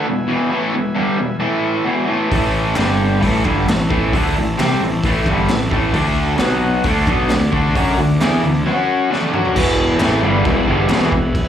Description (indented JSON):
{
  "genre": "garage rock duo or trio",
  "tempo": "133 BPM",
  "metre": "4/4",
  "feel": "straight",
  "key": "unclear",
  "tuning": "A4 = 440 Hz",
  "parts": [
    { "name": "combo organ", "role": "sustained chords", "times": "0.0-11.5 s", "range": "C#4 to A5", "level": "-27 LUFS", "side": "right 1 dB", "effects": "none" },
    { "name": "raw garage guitar", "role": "riff", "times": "0.0-11.3 s", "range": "E2 to F#4", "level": "-16 LUFS", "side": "equal", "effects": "overdrive, slapback echo" },
    { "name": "fuzz picked electric bass", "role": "bass", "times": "2.3-11.3 s", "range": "E1 to F#2", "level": "-20 LUFS", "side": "equal", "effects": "overdrive, tube saturation" },
    { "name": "raw garage drum kit", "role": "drums", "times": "2.3-11.5 s", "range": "crash cymbal, hi-hat, kick drum, snare drum, toms", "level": "-20 LUFS", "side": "equal", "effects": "none" },
    { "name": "group handclap", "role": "percussion", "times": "2.8-11.0 s", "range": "none", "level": "-31 LUFS", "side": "equal", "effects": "none" }
  ],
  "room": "light reverb",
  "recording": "live gig heard through the venue's PA, club reverb",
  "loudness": "-14 LUFS",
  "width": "side -9 dB against mid",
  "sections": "0.0-9.6 A section; 9.6-11.5 B section",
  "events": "drum fill 9.1-9.6",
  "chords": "0.0 E; 1.4 A5; 1.9 E; 2.3 A5; 2.8 G5; 3.2 A5; 6.0 D5; 6.4 B5; 6.9 D5; 8.7 F#5; 9.1 D5; 9.6 E"
}